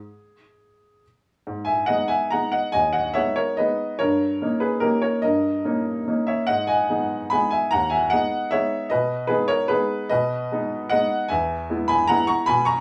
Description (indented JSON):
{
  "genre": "classical, piano waltz",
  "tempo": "130-161 BPM",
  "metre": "3/4",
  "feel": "rubato",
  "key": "G# minor",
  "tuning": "A4 = 440 Hz",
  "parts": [
    { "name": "bright upright piano", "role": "solo", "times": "0.0-12.8 s", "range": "D#2 to C#6", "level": "-22 LUFS", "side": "equal", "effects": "none" }
  ],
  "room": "light reverb",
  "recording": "small room ambience",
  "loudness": "-22 LUFS",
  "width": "mono",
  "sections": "0.0-1.5 A section; 1.5-12.8 A section",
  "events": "none",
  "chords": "0.0 N.C.; 1.5 G#m; 4.0 D#7/G; 6.5 G#m; 8.9 G#m/B; 11.3 E",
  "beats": "| 0.11 0.56 1.02 | 1.48 1.89 2.33 | 2.75 3.17 3.60 | 4.02 4.42 4.84 | 5.25 5.65 6.08 | 6.50 6.91 7.33 | 7.73 8.12 8.53 | 8.92 9.30 9.71 | 10.12 10.52 10.92 | 11.32 11.71 12.11 | 12.50"
}